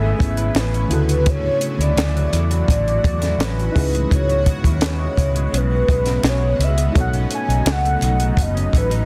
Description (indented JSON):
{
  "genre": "indie pop, bedroom pop",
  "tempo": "84 BPM",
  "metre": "4/4",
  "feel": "straight",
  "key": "unclear",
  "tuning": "A4 = 440 Hz",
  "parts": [
    { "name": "warm velvety synth lead", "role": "melody", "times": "0.0-9.1 s", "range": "B4 to G#5", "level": "-26 LUFS", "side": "equal", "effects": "analog chorus, plate reverb, tape echo" },
    { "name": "electric guitar through a small old amp", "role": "accompaniment", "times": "0.0-9.1 s", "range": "B2 to B4", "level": "-31 LUFS", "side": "equal", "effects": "subtle chorus, vibrato effect" },
    { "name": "reed electric piano", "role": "accompaniment", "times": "0.0-9.1 s", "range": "C#3 to C#5", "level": "-32 LUFS", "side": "equal", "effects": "none" },
    { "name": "shimmering ambient pad", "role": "sustained chords", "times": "0.0-9.1 s", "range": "B2 to G#4", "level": "-32 LUFS", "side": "equal", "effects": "chorus, built-in reverb, phaser" },
    { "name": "vintage muted fingered electric bass", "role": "bass", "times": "0.0-9.0 s", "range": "F#1 to E2", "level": "-22 LUFS", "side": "equal", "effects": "none" },
    { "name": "compact cocktail drum kit", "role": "drums", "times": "0.2-9.1 s", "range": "hi-hat, kick drum, snare drum", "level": "-23 LUFS", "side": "equal", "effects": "none" },
    { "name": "group handclap", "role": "percussion", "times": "0.6-8.2 s", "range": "none", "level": "-34 LUFS", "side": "equal", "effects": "none" }
  ],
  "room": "light reverb",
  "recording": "dense, heavily limited modern master",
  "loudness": "-18 LUFS",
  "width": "mono",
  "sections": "0.0-9.1 A section",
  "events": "none",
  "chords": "0.0 Amaj9; 0.9 Dmaj9; 3.8 C#m7; 7.0 B9",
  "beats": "0.55 | 1.26 1.97 2.69 3.40 | 4.11 4.82 5.53 6.24 | 6.95 7.67 8.38"
}